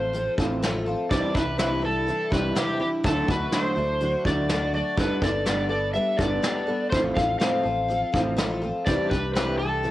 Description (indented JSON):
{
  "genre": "folk rock and heartland rock",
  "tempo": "124 BPM",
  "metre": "4/4",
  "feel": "straight",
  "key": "G major",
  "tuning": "A4 = 440 Hz",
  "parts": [
    { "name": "overdriven slide guitar", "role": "melody", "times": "0.0-9.9 s", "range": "G4 to F5", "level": "-27 LUFS", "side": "left 1 dB", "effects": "cassette tape" },
    { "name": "picked twelve-string acoustic guitar", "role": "accompaniment", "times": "0.0-9.9 s", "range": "A2 to A4", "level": "-29 LUFS", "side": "left 1 dB", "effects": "wide subtle chorus, cassette tape" },
    { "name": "electric guitar through a small old amp", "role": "riff", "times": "0.0-9.9 s", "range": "A2 to D4", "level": "-30 LUFS", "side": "right 1 dB", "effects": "cassette tape" },
    { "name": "fingered electric bass", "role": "bass", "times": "0.0-9.9 s", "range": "G1 to D2", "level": "-31 LUFS", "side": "equal", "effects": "none" },
    { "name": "soft brush drum kit", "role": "drums", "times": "0.1-9.9 s", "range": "hi-hat, kick drum, snare drum", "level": "-27 LUFS", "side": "equal", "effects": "cassette tape" }
  ],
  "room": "light reverb, small room ambience",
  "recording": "home recording on cassette",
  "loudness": "-22 LUFS",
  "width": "side -15 dB against mid",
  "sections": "0.0-9.9 A section",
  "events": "none",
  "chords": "0.0 F/A; 1.1 Cadd9; 3.0 D; 5.0 Gadd9; 6.9 F/A; 8.9 Cadd9"
}